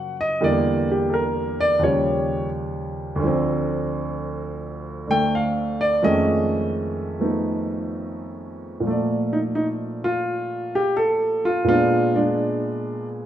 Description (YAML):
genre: solo jazz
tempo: 85 BPM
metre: 4/4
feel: swing 68% on 8ths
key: Bb major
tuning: A4 = 444 Hz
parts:
  - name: warm upright piano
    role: solo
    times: 0.0-13.3 s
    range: D2 to G5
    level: -20 LUFS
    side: right 1 dB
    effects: none
room: wet recital hall reverb, RT60 1.8 s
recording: recorded in a church or concert hall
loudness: -20 LUFS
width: side -11 dB against mid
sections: 0.0-8.8 A section; 8.8-13.3 B section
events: upright piano solo 0.0-8.8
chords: 0.4 Em7b5; 1.8 Eb9; 3.2 Dm7; 6.0 F7alt; 8.8 Bbmaj7; 11.7 Bb7b9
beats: | 0.41 1.11 1.81 2.51 | 3.21 3.91 4.62 5.32 | 6.02 6.73 7.43 8.14 | 8.84 9.55 10.26 10.96 | 11.67 12.38 13.09